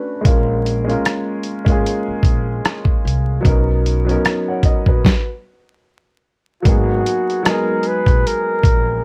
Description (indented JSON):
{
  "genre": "lo-fi hip hop",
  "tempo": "75 BPM",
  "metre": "4/4",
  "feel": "swing 59% on 16ths",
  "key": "G# dorian",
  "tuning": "A4 = 440 Hz",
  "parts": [
    { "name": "warm upright piano", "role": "accompaniment", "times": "0.0-9.0 s", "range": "F#3 to F#5", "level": "-23 LUFS", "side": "equal", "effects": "cassette tape, low-pass filter, plate reverb" },
    { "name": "upright bass", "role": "bass", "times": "0.2-9.0 s", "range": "G#1 to B#1", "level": "-22 LUFS", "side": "equal", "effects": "none" },
    { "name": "dusty soul sampler-style drum kit", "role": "drums", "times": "0.2-8.9 s", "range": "hi-hat, kick drum, rim click, snare drum", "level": "-17 LUFS", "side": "equal", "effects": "none" },
    { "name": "breathy flugelhorn", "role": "melody", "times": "6.6-9.0 s", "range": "E#4 to B4", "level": "-22 LUFS", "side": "equal", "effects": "low-pass filter, plate reverb" }
  ],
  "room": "little or no reverb",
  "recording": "worn, warbling old tape, cassette tape, vinyl crackle, warbly pitch drift",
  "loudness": "-17 LUFS",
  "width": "mono",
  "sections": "0.0-6.7 A section; 6.7-9.0 B section",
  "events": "filter sweep 0.0-6.7; stop 5.0-6.7",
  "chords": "0.2 A#m7; 3.5 Bmaj9; 6.7 G#m9"
}